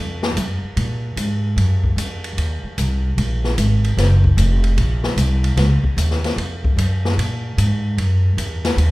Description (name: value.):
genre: modal jazz.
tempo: 150 BPM.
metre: 4/4.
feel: swing 66% on 8ths.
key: unclear.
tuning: A4 = 440 Hz.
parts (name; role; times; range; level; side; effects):
upright bass; bass; 0.0-8.9 s; F1 to Bb2; -17 LUFS; equal; none.
open jazz drum kit; drums; 0.2-8.9 s; hi-hat, kick drum, ride cymbal, snare drum; -24 LUFS; left 1 dB; none.
room: moderate recital hall reverb, RT60 1.3 s.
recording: recorded in a church or concert hall.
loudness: -16 LUFS.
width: side -20 dB against mid.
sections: 0.0-8.9 A section.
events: none.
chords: none.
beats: 0.36 | 0.77 1.17 1.57 1.97 | 2.37 2.77 3.17 3.57 | 3.97 4.37 4.78 5.18 | 5.58 5.98 6.38 6.78 | 7.18 7.58 7.98 8.38 | 8.78.